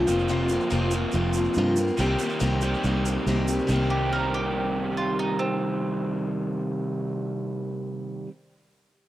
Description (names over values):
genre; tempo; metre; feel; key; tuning
folk rock and heartland rock; 141 BPM; 4/4; straight; C minor; A4 = 440 Hz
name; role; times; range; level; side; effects
picked steel-string acoustic guitar; accompaniment; 0.0-8.3 s; F2 to G4; -28 LUFS; left 2 dB; none
crunchy overdriven guitar; riff; 0.0-8.3 s; F2 to G4; -28 LUFS; right 1 dB; none
fingered electric bass; bass; 0.0-8.2 s; F1 to G2; -27 LUFS; equal; none
egg shaker; percussion; 0.1-3.9 s; none; -40 LUFS; right 6 dB; none
bowl-back mandolin; second line; 3.9-8.5 s; C4 to Bb4; -31 LUFS; right 3 dB; none
room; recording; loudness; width
moderate spring reverb, RT60 2.7 s; home recording on cassette; -23 LUFS; side -14 dB against mid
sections
0.0-3.7 A section; 3.7-7.1 B section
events
none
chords
0.1 Fsus4; 2.0 Cm7